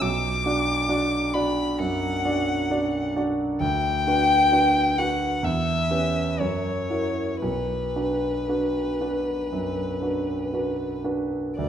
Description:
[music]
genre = classical, romantic duo for violin and grand piano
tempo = 54-70 BPM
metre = 4/4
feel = rubato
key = B minor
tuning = A4 = 440 Hz
[part]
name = warm violin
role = melody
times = 0.0-11.7 s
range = B4 to D6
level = -25 LUFS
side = left 3 dB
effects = none
[part]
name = clear concert grand piano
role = accompaniment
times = 0.0-11.7 s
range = B1 to D5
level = -25 LUFS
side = right 2 dB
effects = none
[sound]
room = wet recital hall reverb, RT60 1.4 s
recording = none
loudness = -22 LUFS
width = side -9 dB against mid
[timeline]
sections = 0.0-11.6 A section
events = none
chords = 0.0 Bm; 3.6 Bm/D; 5.4 C#m7b5/E; 6.4 F#7; 7.4 Bm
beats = | 0.02 0.90 1.80 2.71 | 3.63 4.54 5.45 6.41 | 7.43 8.48 9.52 10.53 | 11.59

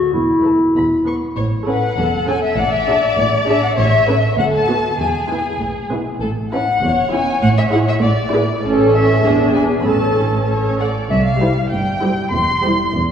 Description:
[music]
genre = cinematic, playful, whimsical film cue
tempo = 99 BPM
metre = 2/4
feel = straight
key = A major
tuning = A4 = 435 Hz
[part]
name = muted chamber violin section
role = melody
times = 0.0-12.9 s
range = D5 to C#6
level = -19 LUFS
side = left 3 dB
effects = none
[part]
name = mellow clarinet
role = second line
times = 0.0-1.0 s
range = E4 to F#4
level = -16 LUFS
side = left 1 dB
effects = none
[part]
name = muted chamber violin section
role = second line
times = 0.0-12.9 s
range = G4 to D5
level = -23 LUFS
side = left 2 dB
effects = none
[part]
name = muted symphonic viola section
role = accompaniment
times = 0.0-12.9 s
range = G3 to A4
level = -20 LUFS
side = right 2 dB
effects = none
[part]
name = muted chamber cello section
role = bass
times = 0.1-13.1 s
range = C2 to B2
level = -22 LUFS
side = right 1 dB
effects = none
[part]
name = muted chamber double bass section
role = bass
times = 0.1-13.1 s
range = E1 to D2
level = -23 LUFS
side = right 2 dB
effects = none
[sound]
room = wet concert hall reverb, RT60 2.2 s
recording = recorded in a church or concert hall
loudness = -14 LUFS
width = side -8 dB against mid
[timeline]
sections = 0.0-1.4 A section; 1.4-11.1 A section; 11.1-13.1 B section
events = none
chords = 0.1 Esus4; 0.8 E5; 1.4 A; 2.6 Dsus2/A; 3.8 A; 4.4 Bm/D; 5.0 E; 6.2 A; 7.4 E7/A; 8.6 A; 9.2 E7; 9.9 A; 11.1 C; 12.3 C/E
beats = | 0.13 0.75 | 1.37 1.98 | 2.58 3.18 | 3.78 4.38 | 4.99 5.60 | 6.22 6.82 | 7.42 8.02 | 8.63 9.24 | 9.86 10.49 | 11.11 11.72 | 12.34 12.95

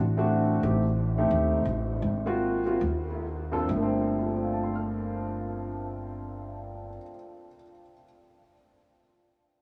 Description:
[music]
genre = jazz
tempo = 126-180 BPM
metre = 4/4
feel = swing 64% on 8ths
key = G minor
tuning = A4 = 438 Hz
[part]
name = upright bass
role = bass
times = 0.0-7.0 s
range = G1 to Eb2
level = -32 LUFS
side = equal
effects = none
[part]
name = warm grand piano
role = melody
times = 0.2-8.0 s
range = G2 to F6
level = -31 LUFS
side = equal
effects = lush chorus, diffuse ambient delay
[sound]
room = wet huge ambient reverb, RT60 4.9 s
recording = dreamy mix soaked in reverb, cassette tape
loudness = -28 LUFS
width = mono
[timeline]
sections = 0.0-3.7 A section; 3.7-7.5 B section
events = slowing down 0.6-3.7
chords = 0.0 D7; 0.6 Am7b5; 2.0 Ab13; 3.7 Gm11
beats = 0.29 | 0.63 0.96 1.31 1.66 | 2.02 2.40 2.80 3.23 | 3.69 4.17 4.64 5.12 | 5.60 6.08 6.55 7.03

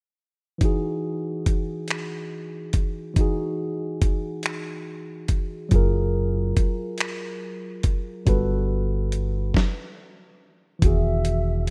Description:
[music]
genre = slow six-eight R&B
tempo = 47 BPM (dotted quarters)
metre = 6/8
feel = straight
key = E major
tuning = A4 = 441 Hz
[part]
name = tine electric piano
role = accompaniment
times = 0.6-11.7 s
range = D#3 to B4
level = -31 LUFS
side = equal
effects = none
[part]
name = dusty soul sampler-style drum kit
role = drums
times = 0.6-11.7 s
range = finger snaps, hi-hat, kick drum, snare drum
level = -25 LUFS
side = equal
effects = none
[part]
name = deep dub fingered electric bass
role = bass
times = 5.7-11.7 s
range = E1 to G1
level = -26 LUFS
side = equal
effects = none
[part]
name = mellow horn-like synth lead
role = melody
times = 10.8-11.6 s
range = E5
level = -32 LUFS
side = equal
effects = chorus
[sound]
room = light reverb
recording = rough home demo mix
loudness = -25 LUFS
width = mono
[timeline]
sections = 0.6-10.8 A section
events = stop 9.5-10.8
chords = 0.6 Emaj9; 5.7 F#maj9; 8.3 Gmaj9; 10.8 Emaj9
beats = | 0.61 1.89 | 3.16 4.44 | 5.72 6.99 | 8.27 9.55 | 10.82

